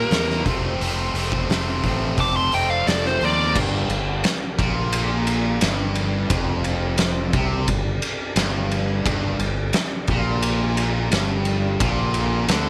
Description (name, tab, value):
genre	blues rock power trio and southern rock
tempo	87 BPM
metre	4/4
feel	straight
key	G minor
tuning	A4 = 439 Hz
part	smooth overdriven lead guitar	melody	0.0-3.6 s	Bb4 to D6	-26 LUFS	equal	none
part	dark smooth lead guitar	second line	0.0-3.6 s	G4 to A5	-35 LUFS	equal	overdrive
part	distorted electric guitar	riff	0.0-12.7 s	F2 to Eb4	-27 LUFS	equal	overdrive
part	growling fingered electric bass	bass	0.0-12.7 s	F1 to E2	-27 LUFS	equal	overdrive
part	oversized low-tuned drum kit	drums	0.1-12.7 s	crash cymbal, hi-hat, kick drum, ride cymbal, snare drum	-26 LUFS	equal	none
part	tonewheel organ	sustained chords	3.5-12.7 s	D4 to Eb5	-36 LUFS	equal	none
room	light reverb, small room reverb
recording	none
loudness	-22 LUFS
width	mono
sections	0.0-3.6 A section; 3.6-12.7 B section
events	none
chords	0.5 F; 3.6 Gm